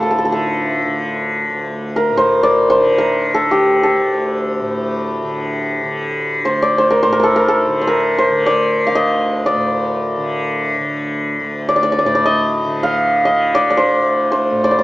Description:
indian classical, Hindustani; free time; D raga bhairavi; A4 = 439 Hz
santur; melody; 0.0-14.8 s; F4 to F5; -15 LUFS; equal
tanpura; drone; 0.0-14.8 s; D2 to D3; -20 LUFS; equal
moderate small room reverb, RT60 0.5 s; band playing live in one room, small speaker sound; -14 LUFS; side -17 dB against mid
0.0-14.8 A section

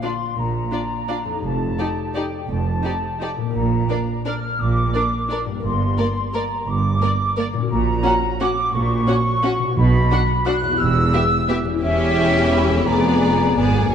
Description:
classical; 172 BPM; 3/4; uneven beats, rubato; Bb major; A4 = 440 Hz
rich symphonic violin section; melody; 0.0-13.9 s; D5 to F#5; -32 LUFS; left 3 dB
mellow flute section; second line; 0.0-13.9 s; E5 to F#6; -23 LUFS; equal
rich studio violin section; second line; 0.0-13.9 s; F4 to Bb4; -28 LUFS; left 3 dB
clear symphonic viola section; accompaniment; 0.0-13.9 s; Bb3 to Eb4; -26 LUFS; equal
concert harp; arpeggios; 0.0-13.9 s; E2 to Bb4; -27 LUFS; left 6 dB
clear studio double bass section; bass; 0.4-13.9 s; E1 to B1; -24 LUFS; right 3 dB
rich symphonic cello section; bass; 0.4-13.9 s; E2 to B2; -24 LUFS; right 3 dB
timpani; percussion; 9.8-10.3 s; B2; -23 LUFS; equal
moderate concert hall reverb, RT60 2.4 s; dark, warm production; -17 LUFS; side -8 dB against mid
0.0-13.9 A section
0.0 Bb; 1.4 F13; 3.6 Bb; 5.6 Gm; 7.7 F#/A#; 9.8 Bm; 10.8 Em; 11.8 C#dim/E; 12.9 Fdim7

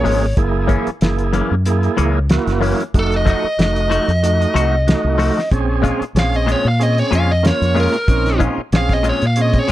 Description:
straight-eighth soul blues; 93 BPM; 4/4; swing 54% on 16ths; Bb minor; A4 = 442 Hz
biting lead guitar; melody; 0.0-9.7 s; A4 to F5; -19 LUFS; left 1 dB; overdrive
tonewheel organ; accompaniment; 0.0-9.7 s; A3 to Ab4; -21 LUFS; right 5 dB; slow rotary speaker, overdrive
direct-recorded clean electric guitar; stabs; 0.0-9.7 s; Gb2 to Gb4; -21 LUFS; left 6 dB; phaser
deep dub fingered electric bass; bass; 0.0-9.7 s; F1 to Bb2; -18 LUFS; equal; transformer saturation
cloth-damped thuddy drum kit; drums; 0.1-9.7 s; hi-hat, kick drum, snare drum; -18 LUFS; equal
studio ambience; dry, close 1970s-style studio recording; -14 LUFS; side -14 dB against mid
0.0-9.7 A section
lead electric guitar solo 0.0-9.7
0.4 Gb7; 2.9 F7b9; 5.5 Bbm7

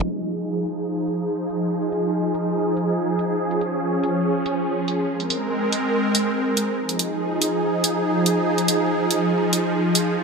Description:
heavy wobble dubstep; 142 BPM; 4/4; half-time; F minor; A4 = 440 Hz
supersaw pad; sustained chords; 0.0-10.2 s; F3 to Bb4; -20 LUFS; right 1 dB
dubstep drum kit; drums; 0.0-10.0 s; crash cymbal, hi-hat; -23 LUFS; right 1 dB; studio reverb
moderate lush hall reverb, RT60 2.1 s; high-pass filter, low-pass filter; -20 LUFS; side -4 dB against mid
0.0-6.8 A section; 6.8-10.2 B section
filter sweep 0.0-6.8; build-up 6.8-10.2
0.0 Fm7; 3.4 Db; 5.1 Abadd9; 6.8 Fm7

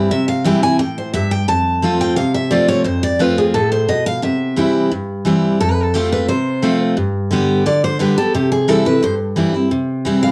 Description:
bluegrass; 175 BPM; 4/4; straight; C major; A4 = 440 Hz
picked steel-string acoustic guitar; accompaniment; 0.0-10.3 s; F2 to G4; -18 LUFS; equal; cassette tape
picked steel-string acoustic guitar; melody; 0.1-10.3 s; G4 to A5; -20 LUFS; equal; cassette tape
moderate studio reverb, RT60 0.6 s; home recording on cassette; -16 LUFS; mono
0.0-9.7 A section
0.0 C; 1.5 F; 4.2 C; 5.6 F; 7.0 G; 8.3 C

